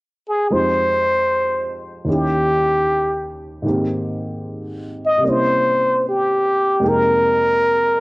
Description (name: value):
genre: jazz ballad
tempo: 76 BPM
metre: 4/4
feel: swing 69% on 8ths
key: F minor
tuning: A4 = 440 Hz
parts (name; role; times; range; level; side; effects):
- trumpet with plunger mute; melody; 0.3-8.0 s; G4 to Eb5; -16 LUFS; equal; cassette tape
- warm baby grand piano; accompaniment; 0.5-8.0 s; Eb2 to G5; -22 LUFS; equal; cassette tape
room: moderate spring reverb, RT60 1.3 s, small room ambience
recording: home recording on cassette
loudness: -16 LUFS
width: side -22 dB against mid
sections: 0.5-6.8 A section; 6.8-8.0 B section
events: none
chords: 0.5 Fm7; 2.1 Eb7b9; 3.6 Abmaj7; 5.2 C7b9; 6.8 Fm11